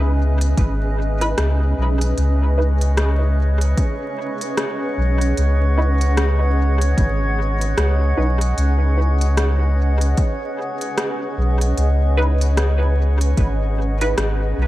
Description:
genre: ambient dub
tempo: 75 BPM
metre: 4/4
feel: swing 59% on 16ths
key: C# minor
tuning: A4 = 440 Hz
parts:
  - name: granular cloud pad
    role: sustained chords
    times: 0.0-14.7 s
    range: C#4 to F#5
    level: -25 LUFS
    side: equal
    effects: built-in reverb, vintage 12-bit sampler grit
  - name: soft dub sub bass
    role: bass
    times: 0.0-14.7 s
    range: G#1 to C#2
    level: -17 LUFS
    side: equal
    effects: tube saturation
  - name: organic electronic drum kit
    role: drums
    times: 0.4-14.4 s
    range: hi-hat, rim click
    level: -27 LUFS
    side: equal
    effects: dub echo
  - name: electronic kick drum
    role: drums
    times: 0.6-13.6 s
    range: none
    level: -19 LUFS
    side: equal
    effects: none
  - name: filtered dub chord stab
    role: stabs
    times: 1.2-14.1 s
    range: D#4 to B4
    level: -29 LUFS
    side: right 1 dB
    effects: phaser, ensemble chorus, dub echo
  - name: drifting glass-harmonics texture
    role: texture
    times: 2.8-14.7 s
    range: C#5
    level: -29 LUFS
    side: right 1 dB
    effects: chorus, built-in reverb
room: digital ambience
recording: vinyl crackle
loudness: -16 LUFS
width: side -16 dB against mid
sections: 0.0-14.7 A section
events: none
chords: 0.0 C#m9

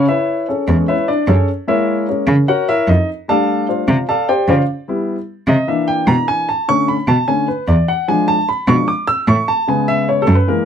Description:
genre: jazz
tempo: 150 BPM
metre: 4/4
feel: straight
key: A major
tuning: A4 = 444 Hz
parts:
  - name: warm baby grand piano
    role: accompaniment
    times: 0.0-10.7 s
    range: C#3 to E6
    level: -15 LUFS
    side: left 1 dB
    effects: none
  - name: warm cello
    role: bass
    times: 0.7-10.4 s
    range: E2 to C#3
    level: -14 LUFS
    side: right 1 dB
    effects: none
room: light reverb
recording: close, detailed microphones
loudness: -13 LUFS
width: side -8 dB against mid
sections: 0.1-10.7 A section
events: grand piano solo 0.1-10.7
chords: 0.1 Amaj9; 1.7 F#9; 3.3 F69; 4.9 C#m7b5 (rootless); 5.7 C9 (rootless); 6.5 Bm9; 8.1 E7b9; 9.7 Amaj9

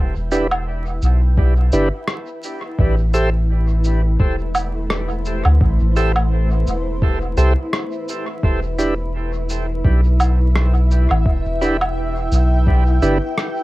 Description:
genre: ambient dub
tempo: 85 BPM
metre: 4/4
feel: swing 56% on 16ths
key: A minor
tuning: A4 = 439 Hz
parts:
  - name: granular cloud pad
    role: sustained chords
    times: 0.0-13.6 s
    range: A3 to G5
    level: -27 LUFS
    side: left 1 dB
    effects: built-in reverb
  - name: soft dub sub bass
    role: bass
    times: 0.0-13.2 s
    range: E1 to D2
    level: -17 LUFS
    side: equal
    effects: none
  - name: tonewheel organ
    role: stabs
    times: 0.3-13.2 s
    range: D4 to E5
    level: -22 LUFS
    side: right 2 dB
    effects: slow rotary speaker, dub echo
  - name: electronic shaker, woodblock and rim click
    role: drums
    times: 0.3-13.5 s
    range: none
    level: -24 LUFS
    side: right 1 dB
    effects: overdrive, cassette tape, dub echo
  - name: electronic kick drum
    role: drums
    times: 1.4-12.8 s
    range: none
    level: -18 LUFS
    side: equal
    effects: overdrive, cassette tape
room: little or no reverb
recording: home recording on cassette, vinyl crackle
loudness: -15 LUFS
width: side -18 dB against mid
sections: 0.0-13.6 A section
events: fade-in on ambient pad 0.0-13.6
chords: 0.0 Em7; 2.8 Am7; 8.4 Em7

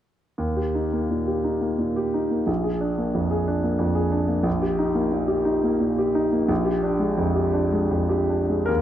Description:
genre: classical, romantic character piece for solo piano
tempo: 75-93 BPM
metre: 3/4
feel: rubato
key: Eb major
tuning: A4 = 441 Hz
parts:
  - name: warm grand piano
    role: solo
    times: 0.4-8.8 s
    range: Bb1 to Bb4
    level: -21 LUFS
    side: equal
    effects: none
room: moderate scoring stage reverb, RT60 1.9 s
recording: dark, warm production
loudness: -21 LUFS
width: side -11 dB against mid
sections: 0.4-8.7 A section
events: none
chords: 0.4 Eb; 2.5 Bb7; 4.5 Eb/Bb; 6.5 Bb6

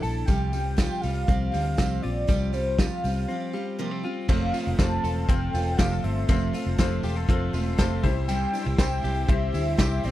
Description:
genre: jangly indie pop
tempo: 120 BPM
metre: 4/4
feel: straight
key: F major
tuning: A4 = 444 Hz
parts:
  - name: warm velvety synth lead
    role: melody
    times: 0.0-10.1 s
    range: C5 to A5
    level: -31 LUFS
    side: equal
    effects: chorus
  - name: picked steel-string acoustic guitar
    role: accompaniment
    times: 0.0-10.1 s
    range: F2 to A4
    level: -32 LUFS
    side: right 6 dB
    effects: none
  - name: direct-recorded clean electric guitar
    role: arpeggios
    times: 0.0-10.1 s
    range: G3 to A4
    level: -32 LUFS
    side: left 5 dB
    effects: slapback echo
  - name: vintage muted fingered electric bass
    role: bass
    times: 0.0-10.1 s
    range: E1 to D2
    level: -27 LUFS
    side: equal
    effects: none
  - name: vintage drum kit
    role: drums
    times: 0.0-10.1 s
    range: crash cymbal, hi-hat, kick drum, ride cymbal, snare drum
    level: -24 LUFS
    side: equal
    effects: none
  - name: tambourine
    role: percussion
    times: 0.0-10.1 s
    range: none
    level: -44 LUFS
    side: right 13 dB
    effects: none
  - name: bright upright piano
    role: accompaniment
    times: 4.3-10.1 s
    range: E4 to C5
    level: -35 LUFS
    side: left 8 dB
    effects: none
  - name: lush unison pad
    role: sustained chords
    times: 5.0-10.1 s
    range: G4 to C6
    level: -39 LUFS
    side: left 1 dB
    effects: chorus, phaser
room: small room reverb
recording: none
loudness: -22 LUFS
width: side -14 dB against mid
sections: 0.0-4.3 A section; 4.3-10.1 B section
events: break 3.3-4.3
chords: 0.3 Csus4; 4.3 F; 8.0 C

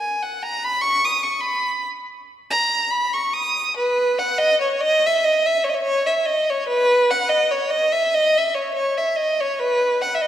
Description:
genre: balkan folk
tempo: free time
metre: none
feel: none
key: unclear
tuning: A4 = 439 Hz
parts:
  - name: warm violin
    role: solo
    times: 0.0-10.3 s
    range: B4 to D#6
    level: -18 LUFS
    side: equal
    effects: none
room: wet concert hall reverb, RT60 2.2 s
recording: recorded in a church or concert hall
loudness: -18 LUFS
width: side -11 dB against mid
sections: 0.0-3.8 A section; 3.8-10.3 B section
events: violin solo 0.0-3.8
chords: none

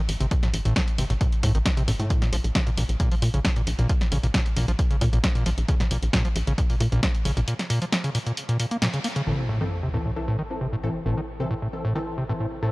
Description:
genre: driving peak-time techno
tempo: 134 BPM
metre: 4/4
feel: straight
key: unclear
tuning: A4 = 441 Hz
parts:
  - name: tight sequencer bass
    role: bass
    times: 0.1-12.7 s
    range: A1 to Bb2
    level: -26 LUFS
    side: equal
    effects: sidechain pumping
  - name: punchy analog drum machine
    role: drums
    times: 0.1-9.2 s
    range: hi-hat, snare drum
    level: -29 LUFS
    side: equal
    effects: sidechain pumping on hats
  - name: overdriven acid bass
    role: riff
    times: 0.2-12.7 s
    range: A2 to Bb3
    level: -27 LUFS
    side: equal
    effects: sidechain pumping
  - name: electronic kick drum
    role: drums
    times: 0.3-7.1 s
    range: none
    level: -24 LUFS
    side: equal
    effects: none
  - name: rave stab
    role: stabs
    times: 9.3-12.7 s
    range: E3 to A4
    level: -31 LUFS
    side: left 1 dB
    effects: chorus, built-in reverb, sidechain pumping, analog delay
  - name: sub drop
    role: sound effects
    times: 9.3-11.1 s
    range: none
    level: -30 LUFS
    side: equal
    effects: none
room: little or no reverb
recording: dry, gritty hardware recording, cassette tape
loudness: -22 LUFS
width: side -23 dB against mid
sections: 0.0-9.3 A section; 9.3-12.7 B section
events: break 7.5-9.3; band accent 8.8; impact 9.3-11.1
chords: 0.0 N.C.; 9.3 Am

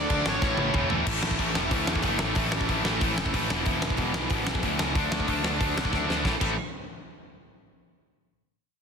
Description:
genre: punk rock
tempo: 185 BPM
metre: 4/4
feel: straight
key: A major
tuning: A4 = 440 Hz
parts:
  - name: overdriven semi-hollow guitar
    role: melody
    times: 0.0-0.9 s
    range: C#5 to D5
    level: -31 LUFS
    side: equal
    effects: none
  - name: distorted electric guitar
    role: riff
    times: 0.0-6.5 s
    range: E2 to D4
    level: -30 LUFS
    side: left 18 dB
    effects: overdrive
  - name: high-gain distorted guitar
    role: riff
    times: 0.0-3.5 s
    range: A2 to F#4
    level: -34 LUFS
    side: equal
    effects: none
  - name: tight distorted guitar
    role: riff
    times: 0.0-6.5 s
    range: E2 to D4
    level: -31 LUFS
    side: right 16 dB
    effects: distortion
  - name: fuzz picked electric bass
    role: bass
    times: 0.0-6.6 s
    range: E1 to E2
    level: -32 LUFS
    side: equal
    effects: overdrive
  - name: big rock drum kit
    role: drums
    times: 0.1-6.5 s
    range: crash cymbal, hi-hat, kick drum, snare drum, toms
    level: -28 LUFS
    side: equal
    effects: none
room: little or no reverb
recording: dense, heavily limited modern master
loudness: -24 LUFS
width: side -6 dB against mid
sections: 0.0-1.1 A section; 1.1-6.2 B section; 6.2-7.5 C section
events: drum fill 0.4-1.1, 5.9-6.2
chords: 0.4 A; 3.5 E5; 5.0 D5; 6.2 A5

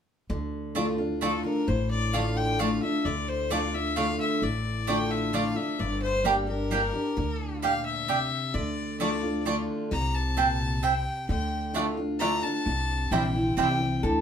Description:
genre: bluegrass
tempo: 131 BPM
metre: 3/4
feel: straight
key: D minor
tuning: A4 = 439 Hz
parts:
  - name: picked steel-string acoustic guitar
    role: accompaniment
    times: 0.3-14.2 s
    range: G2 to G4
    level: -29 LUFS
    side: left 1 dB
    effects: none
  - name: upright bass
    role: bass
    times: 0.3-14.2 s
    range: G1 to D2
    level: -31 LUFS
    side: equal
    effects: none
  - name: mandolin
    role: stabs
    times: 0.8-13.7 s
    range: A3 to A5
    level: -28 LUFS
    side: right 5 dB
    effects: none
  - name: clear fiddle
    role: melody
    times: 1.2-14.0 s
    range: A4 to Bb5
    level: -31 LUFS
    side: left 4 dB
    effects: none
  - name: bluegrass banjo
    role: melody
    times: 11.8-13.7 s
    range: G3 to E4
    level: -33 LUFS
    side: right 2 dB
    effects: none
  - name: lap resonator guitar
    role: second line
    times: 14.0-14.2 s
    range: A4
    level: -26 LUFS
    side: left 2 dB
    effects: none
room: wet studio reverb, RT60 0.5 s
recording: band playing live in one room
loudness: -25 LUFS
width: side -8 dB against mid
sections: 0.3-14.2 A section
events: none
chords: 0.3 Dm; 5.8 Gm; 8.5 Dm; 9.9 C; 11.3 Dm; 12.7 C

